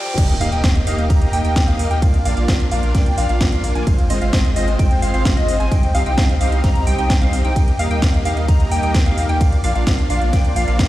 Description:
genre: EDM, festival progressive house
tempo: 130 BPM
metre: 4/4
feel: straight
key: Eb major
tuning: A4 = 442 Hz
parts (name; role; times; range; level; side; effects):
- riser and impact; sound effects; 0.0-2.0 s; none; -29 LUFS; equal; none
- house drum kit; drums; 0.1-10.9 s; crash cymbal, hi-hat, ride cymbal, snare drum, toms; -26 LUFS; equal; none
- lush unison pad; sustained chords; 0.6-10.9 s; F3 to G4; -29 LUFS; equal; chorus, phaser, sidechain pumping
- plucky unison lead; arpeggios; 0.2-10.9 s; Eb5 to Bb5; -24 LUFS; left 1 dB; sidechain pumping, dub echo
- dense compressed supersaw; riff; 0.2-10.9 s; Ab3 to Bb5; -24 LUFS; equal; sidechain pumping, dub echo
- saturated sub bass; bass; 0.2-10.9 s; Ab1 to Eb2; -20 LUFS; equal; sidechain pumping
- electronic kick drum; drums; 0.2-10.9 s; none; -16 LUFS; equal; high-pass filter on kick, high-pass filter on room
room: digital ambience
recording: played on a big sound system in a bare room, large studio reverb, high-pass filter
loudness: -14 LUFS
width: side -15 dB against mid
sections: 0.2-10.9 A section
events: break 0.0; drum fill 0.0; riser 0.0; drop 0.2-10.9; impact 0.2-2.0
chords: 0.2 Eb; 2.0 Bb; 3.9 Fm/Ab; 5.7 Cm; 7.6 Eb; 9.4 Bb

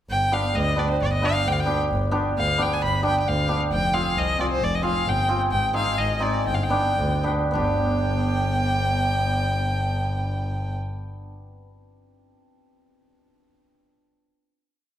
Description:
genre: klezmer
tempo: 99-133 BPM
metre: 2/4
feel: straight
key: G phrygian dominant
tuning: A4 = 441 Hz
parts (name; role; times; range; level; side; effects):
- rich violin; melody; 0.1-10.7 s; C5 to B5; -25 LUFS; equal; none
- clear double bass; bass; 0.1-10.7 s; F1 to D2; -25 LUFS; equal; none
- cimbalom; accompaniment; 0.3-11.7 s; B3 to Ab4; -26 LUFS; right 1 dB; none
room: moderate recital hall reverb, RT60 1.4 s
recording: none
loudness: -21 LUFS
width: side -11 dB against mid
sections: 0.1-7.5 A section; 7.5-10.0 final chord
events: slowing down 5.5-7.5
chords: 0.1 G; 3.7 Fm; 5.5 Ab; 6.5 G

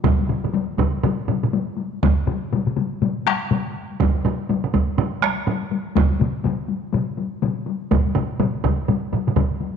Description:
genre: japanese traditional, taiko drum ensemble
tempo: 122 BPM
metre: 4/4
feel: swing 60% on 16ths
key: none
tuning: none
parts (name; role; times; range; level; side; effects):
- solo taiko drums; percussion; 0.0-9.5 s; none; -22 LUFS; right 4 dB; none
- taiko ensemble; percussion; 0.0-9.7 s; none; -25 LUFS; left 8 dB; none
- taiko ensemble; percussion; 0.0-9.5 s; none; -24 LUFS; left 5 dB; none
- taiko ensemble; percussion; 0.0-9.5 s; none; -24 LUFS; right 7 dB; none
room: moderate echo chamber reverb, RT60 1.8 s, studio reverb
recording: 1960s-style stereo with parts hard left and right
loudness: -19 LUFS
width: side -7 dB against mid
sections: 0.0-9.8 A section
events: speeding up 0.0-9.8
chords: none

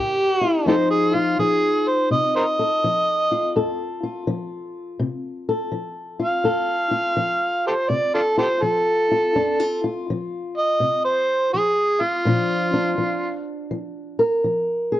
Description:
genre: blues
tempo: 83 BPM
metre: 4/4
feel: swing 65% on 8ths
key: F mixolydian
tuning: A4 = 440 Hz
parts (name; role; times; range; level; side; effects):
- overdriven harmonica; melody; 0.0-13.4 s; D4 to F5; -19 LUFS; right 1 dB; plate reverb
- fingerpicked old ladder-braced acoustic guitar; accompaniment; 0.0-15.0 s; F2 to Bb4; -23 LUFS; left 2 dB; none
room: moderate small room reverb, RT60 0.5 s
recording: worn, warbling old tape, cassette tape, warbly pitch drift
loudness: -19 LUFS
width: side -13 dB against mid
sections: 0.7-15.0 A section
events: none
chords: 0.0 C7 (rootless); 0.7 F7; 12.2 Bb

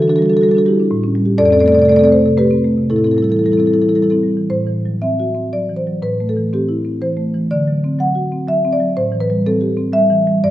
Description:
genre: classical, contemporary piece for solo marimba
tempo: 111-127 BPM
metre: 3/4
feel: rubato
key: A dorian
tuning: A4 = 440 Hz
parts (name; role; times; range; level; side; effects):
- marimba with soft mallets; solo; 0.0-10.5 s; F2 to F#5; -13 LUFS; equal; none
room: wet recital hall reverb, RT60 1.7 s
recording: dark, warm production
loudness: -13 LUFS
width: side -14 dB against mid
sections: 0.0-4.5 A section; 4.5-10.5 B section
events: none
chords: 0.0 Em11; 0.9 A7; 1.4 F; 2.9 Am7; 4.5 Am6; 6.0 C/A; 7.5 D7; 9.0 Am7

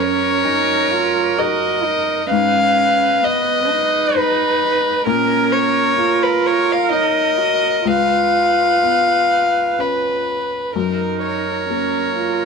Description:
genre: neoclassical piano and strings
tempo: 64 BPM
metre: 3/4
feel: rubato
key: F# major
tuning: A4 = 440 Hz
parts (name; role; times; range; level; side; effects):
- rich violin; melody; 0.0-12.4 s; A#4 to E#5; -17 LUFS; left 4 dB; none
- dark cello; second line; 0.0-12.4 s; B3 to F#4; -22 LUFS; right 11 dB; none
- felt-muted upright piano; accompaniment; 0.0-12.4 s; C#2 to C#5; -25 LUFS; left 11 dB; none
- warm viola; accompaniment; 0.0-12.4 s; A#4 to B4; -22 LUFS; right 14 dB; none
room: light reverb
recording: 1960s-style stereo with parts hard left and right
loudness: -14 LUFS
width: side -5 dB against mid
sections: 0.0-12.4 A section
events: none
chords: 0.0 F#6; 2.3 G#m; 5.1 A#madd11; 7.9 C#7; 10.7 F#6

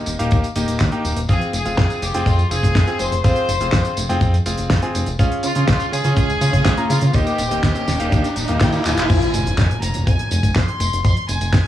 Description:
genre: italo disco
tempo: 123 BPM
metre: 4/4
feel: straight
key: F minor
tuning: A4 = 440 Hz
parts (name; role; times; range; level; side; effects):
- bright electric grand piano; stabs; 0.0-9.1 s; Bb3 to Bb5; -24 LUFS; right 1 dB; tape echo
- chorused synth bass; bass; 0.1-11.6 s; Eb1 to Db3; -20 LUFS; equal; none
- damped 70s drum kit; drums; 0.1-11.6 s; crash cymbal, handclaps, hi-hat, snare drum, tambourine; -25 LUFS; equal; none
- kick drum; drums; 0.3-11.6 s; none; -19 LUFS; equal; none
- clear chamber violin section; melody; 1.3-11.7 s; F4 to C6; -24 LUFS; left 2 dB; analog delay
- riser and impact; sound effects; 6.3-11.0 s; none; -24 LUFS; left 1 dB; none
room: small room reverb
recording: dry, gritty hardware recording, vinyl crackle, small room ambience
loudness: -16 LUFS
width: side -12 dB against mid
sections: 0.0-9.1 A section; 9.1-11.7 B section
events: riser 6.3-9.1; drum fill 8.9; impact 9.1-11.0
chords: 0.0 Eb; 1.3 Fm; 5.2 Db; 7.1 Eb; 9.1 Fm

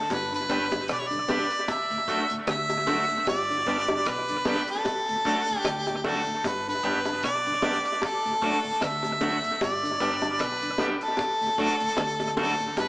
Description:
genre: roots reggae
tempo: 76 BPM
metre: 4/4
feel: swing 56% on 16ths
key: D major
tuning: A4 = 442 Hz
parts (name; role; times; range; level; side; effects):
- clear harmonica; melody; 0.0-12.9 s; A4 to E5; -26 LUFS; equal; tape echo
- deep dub fingered electric bass; bass; 0.0-12.9 s; G1 to D2; -38 LUFS; equal; none
- deep reggae drum kit; drums; 0.1-12.9 s; hi-hat, kick drum, rim click; -36 LUFS; equal; tape echo
- bongos; percussion; 0.1-12.9 s; none; -32 LUFS; equal; tape echo
- mellow tonewheel organ; accompaniment; 0.3-12.7 s; D2 to D4; -34 LUFS; equal; chorus vibrato, slow rotary speaker
- electric guitar at the edge of break-up; accompaniment; 0.5-12.5 s; A3 to B4; -32 LUFS; right 1 dB; tape echo
room: wet stone room reverb, RT60 1.2 s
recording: band playing live in one room, small speaker sound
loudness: -24 LUFS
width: side -21 dB against mid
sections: 0.0-12.9 A section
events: none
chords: 0.1 G; 1.7 D; 3.3 G; 4.9 D; 6.4 G; 8.0 D; 9.6 G; 11.2 D

